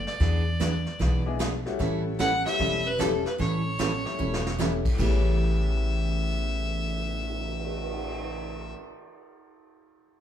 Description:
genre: country, western swing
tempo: 151 BPM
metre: 4/4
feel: swing 65% on 8ths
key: A mixolydian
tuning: A4 = 439 Hz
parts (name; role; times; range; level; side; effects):
- clear fiddle; melody; 0.0-8.7 s; A4 to F#5; -31 LUFS; left 1 dB; none
- upright bass; bass; 0.0-8.7 s; E1 to E2; -28 LUFS; equal; none
- vintage brush drum kit; drums; 0.1-8.1 s; brushed snare drum, crash cymbal, cymbal swell, hi-hat, kick drum, snare drum; -33 LUFS; equal; none
- picked steel-string acoustic guitar; accompaniment; 0.2-8.8 s; A2 to A4; -31 LUFS; right 3 dB; none
- bright upright piano; accompaniment; 1.3-8.8 s; A2 to G#4; -34 LUFS; left 7 dB; none
room: moderate large studio reverb, RT60 0.8 s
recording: band playing live in one room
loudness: -24 LUFS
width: side -10 dB against mid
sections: 0.0-5.0 A section; 5.0-8.2 B section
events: drum fill 4.2-4.6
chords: 0.2 E7; 1.8 A7; 5.0 A9

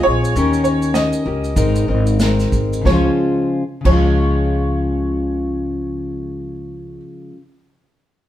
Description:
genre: acoustic pop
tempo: 90-102 BPM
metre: 4/4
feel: swing 60% on 16ths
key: Db major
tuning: A4 = 440 Hz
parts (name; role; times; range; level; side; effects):
- bright upright piano; melody; 0.0-7.0 s; Db5 to Eb5; -22 LUFS; right 2 dB; none
- fingerpicked plugged-in steel-string acoustic guitar; accompaniment; 0.0-7.4 s; Db3 to C5; -19 LUFS; left 2 dB; none
- upright bass; bass; 0.0-7.0 s; Ab1 to Eb2; -20 LUFS; equal; none
- unplugged drum kit; drums; 0.2-4.1 s; crash cymbal, kick drum, shaker, snare drum; -21 LUFS; equal; none
room: moderate stone room reverb, RT60 1.1 s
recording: band playing live in one room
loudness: -15 LUFS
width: side -12 dB against mid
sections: 0.0-2.9 A section; 2.9-5.5 B section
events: slowing down 0.0-2.9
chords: 0.4 Eb7; 1.6 Abadd9; 2.9 Dbmaj7

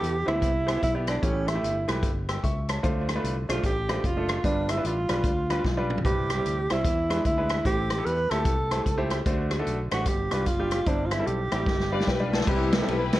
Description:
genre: uptempo gospel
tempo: 149 BPM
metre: 4/4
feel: swing 63% on 8ths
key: C major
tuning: A4 = 440 Hz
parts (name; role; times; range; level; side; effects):
- breathy tenor saxophone; melody; 0.0-12.3 s; C#4 to B4; -28 LUFS; right 2 dB; slapback echo
- bright baby grand piano; accompaniment; 0.0-13.2 s; G2 to E6; -31 LUFS; equal; none
- fingered electric bass; bass; 0.0-13.2 s; F#1 to E2; -30 LUFS; equal; none
- swinging big-band drum kit; drums; 0.0-13.2 s; crash cymbal, hi-hat, kick drum, ride cymbal, rim click, snare drum, toms; -28 LUFS; equal; none
- muted studio string section; melody; 11.9-13.2 s; B3 to D5; -28 LUFS; left 4 dB; none
room: light reverb, studio reverb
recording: worn, warbling old tape, cassette tape, warbly pitch drift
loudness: -23 LUFS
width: side -15 dB against mid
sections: 0.0-12.5 A section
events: drum fill 5.6-6.0, 11.7-12.5; grand piano fill 11.7-12.5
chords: 0.0 Cmaj7; 1.2 A7; 2.8 Dm7; 4.4 G7; 6.0 Cmaj7; 6.9 E7; 7.7 Am7; 9.3 D7; 10.1 G7; 10.9 C/G; 11.7 G7; 12.5 Cmaj7

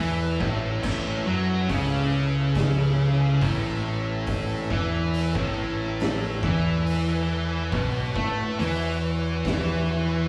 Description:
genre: stoner and doom metal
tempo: 70 BPM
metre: 4/4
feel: straight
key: unclear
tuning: A4 = 440 Hz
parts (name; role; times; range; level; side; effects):
- tonewheel organ; sustained chords; 0.0-10.3 s; A3 to C#5; -38 LUFS; equal; slow rotary speaker
- heavy high-gain guitar; riff; 0.0-10.3 s; A2 to A3; -33 LUFS; equal; distortion
- thick fuzz guitar; riff; 0.0-10.3 s; A2 to A3; -30 LUFS; equal; distortion
- thick fuzz guitar; riff; 0.0-10.3 s; A2 to A3; -32 LUFS; equal; none
- fuzz fingered electric bass; bass; 0.0-10.3 s; A1 to A2; -32 LUFS; equal; overdrive
- oversized low-tuned drum kit; drums; 0.4-9.7 s; crash cymbal, hi-hat, kick drum, snare drum; -34 LUFS; equal; none
room: wet stone room reverb, RT60 1.0 s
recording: band playing live in one room, small room ambience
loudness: -25 LUFS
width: mono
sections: 0.0-10.3 A section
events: none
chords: 0.0 A5; 7.7 B5

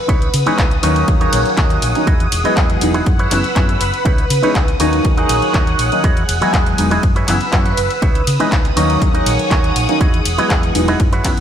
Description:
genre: filtered disco house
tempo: 121 BPM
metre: 4/4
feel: straight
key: unclear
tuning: A4 = 440 Hz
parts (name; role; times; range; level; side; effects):
- phased string machine; sustained chords; 0.0-11.4 s; G#4 to E6; -21 LUFS; right 1 dB; ensemble chorus, phaser, sidechain pumping
- electric guitar with an envelope filter; riff; 0.1-11.3 s; D#4 to D#5; -22 LUFS; right 4 dB; vibrato effect, sidechain pumping
- hollow-body short-scale fingered electric bass; bass; 0.1-11.4 s; E1 to C#3; -20 LUFS; equal; sidechain pumping
- electronic kick drum; drums; 0.1-11.3 s; none; -16 LUFS; equal; small room ambience
- house drum kit; drums; 0.1-11.4 s; handclaps, hi-hat, ride cymbal; -23 LUFS; left 1 dB; small room ambience, sidechain pumping on hats, sidechain pumping on cymbals
- warm concert grand piano; accompaniment; 0.5-11.3 s; D#3 to D#5; -19 LUFS; left 1 dB; phaser, sidechain pumping
room: moderate lush hall reverb, RT60 1.7 s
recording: dreamy mix soaked in reverb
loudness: -12 LUFS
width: side -9 dB against mid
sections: 0.0-11.4 A section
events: none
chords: 0.1 C#m9; 0.8 D#m7; 2.1 Emaj9; 3.1 F#7sus4; 4.1 C#m9; 4.8 D#m7; 6.0 Emaj9; 7.0 F#7sus4; 8.0 C#m9; 8.8 D#m7; 10.0 Emaj9

